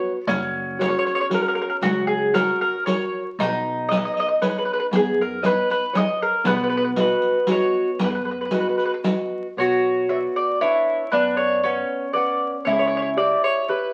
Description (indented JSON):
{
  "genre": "italian folk, Italian serenade",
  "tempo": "116 BPM",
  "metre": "3/4",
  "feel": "straight",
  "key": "B major, B minor from 9.6 s",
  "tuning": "A4 = 440 Hz",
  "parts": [
    { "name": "mandolin", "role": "melody", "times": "0.0-13.9 s", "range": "F#4 to E5", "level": "-25 LUFS", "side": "equal", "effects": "none" },
    { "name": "mandolin", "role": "second line", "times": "0.0-13.9 s", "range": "B3 to F#4", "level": "-26 LUFS", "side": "equal", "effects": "none" },
    { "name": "nylon-string guitar", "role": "accompaniment", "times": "0.0-13.9 s", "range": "F#3 to F#5", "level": "-28 LUFS", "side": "equal", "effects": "none" },
    { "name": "upright bass", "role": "bass", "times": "0.3-13.3 s", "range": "F#1 to F#2", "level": "-36 LUFS", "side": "equal", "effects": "none" },
    { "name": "riq", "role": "percussion", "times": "0.3-9.3 s", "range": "none", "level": "-28 LUFS", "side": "equal", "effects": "none" }
  ],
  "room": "wet studio reverb, RT60 0.7 s",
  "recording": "very old 78 rpm record, vinyl crackle",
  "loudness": "-22 LUFS",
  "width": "mono",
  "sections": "0.0-9.6 A section; 9.6-13.9 B section",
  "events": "none",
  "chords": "0.3 F#; 3.4 Badd9; 6.5 B; 9.6 Bmadd9; 12.7 C#dim",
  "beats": "| 0.28 0.79 1.30 | 1.81 2.33 2.86 | 3.38 3.90 4.41 | 4.92 5.43 5.94 | 6.45 6.96 7.47 | 7.99 8.51 9.04 | 9.57 10.09 10.61 | 11.13 11.64 12.16 | 12.67 13.18 13.69"
}